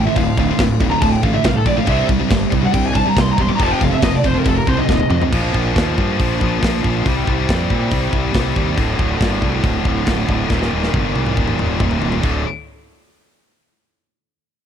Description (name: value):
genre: heavy metal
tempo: 139 BPM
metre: 4/4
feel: straight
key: D phrygian from 5.3 s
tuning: A4 = 437 Hz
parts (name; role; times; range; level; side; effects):
- high-gain lead guitar; melody; 0.0-5.2 s; A4 to D6; -22 LUFS; equal; distortion, tape echo
- rich symphonic string section; sustained chords; 0.0-5.3 s; C3 to A4; -29 LUFS; equal; none
- heavy high-gain guitar; riff; 0.0-12.4 s; D2 to C4; -22 LUFS; left 11 dB; distortion
- heavy high-gain guitar; riff; 0.0-12.4 s; D2 to C4; -22 LUFS; right 11 dB; distortion
- fuzz fingered electric bass; bass; 0.0-12.4 s; D1 to Bb2; -21 LUFS; equal; overdrive
- tight metal drum kit; drums; 0.2-12.3 s; crash cymbal, hi-hat, kick drum, snare drum, toms; -20 LUFS; equal; none
room: little or no reverb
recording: dark, warm production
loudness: -14 LUFS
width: side -8 dB against mid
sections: 0.0-5.3 A section; 5.3-12.2 B section; 12.2-14.0 C section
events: lead electric guitar solo 0.0-5.3; drum fill 4.9-5.3, 10.5-12.2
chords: 0.0 Dm; 1.9 C5; 3.6 F7; 5.3 Bb5; 7.0 C5; 8.8 D5; 10.5 Eb5; 12.2 D5